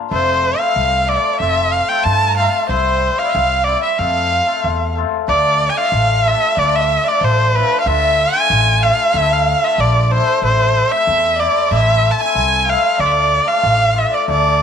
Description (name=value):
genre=klezmer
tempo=93 BPM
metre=2/4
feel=straight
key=F major, D minor from 5.3 s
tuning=A4 = 440 Hz
part: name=rich erhu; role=melody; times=0.1-14.6 s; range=B4 to A5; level=-15 LUFS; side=right 1 dB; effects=none
part: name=rich violin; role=second line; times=0.1-14.6 s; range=C5 to A5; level=-24 LUFS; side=right 13 dB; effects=none
part: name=cimbalom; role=accompaniment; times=0.1-14.5 s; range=G3 to G#4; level=-20 LUFS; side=left 12 dB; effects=none
part: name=upright bass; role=bass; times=0.1-14.6 s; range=F1 to G2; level=-19 LUFS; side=right 1 dB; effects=none
room=moderate spring reverb, RT60 1.6 s, studio reverb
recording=1960s-style stereo with parts hard left and right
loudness=-13 LUFS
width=side -7 dB against mid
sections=0.0-5.3 A section; 5.3-14.6 B section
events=none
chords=0.1 F; 2.7 C; 4.0 F; 5.3 Dm; 10.4 Am; 13.0 Dm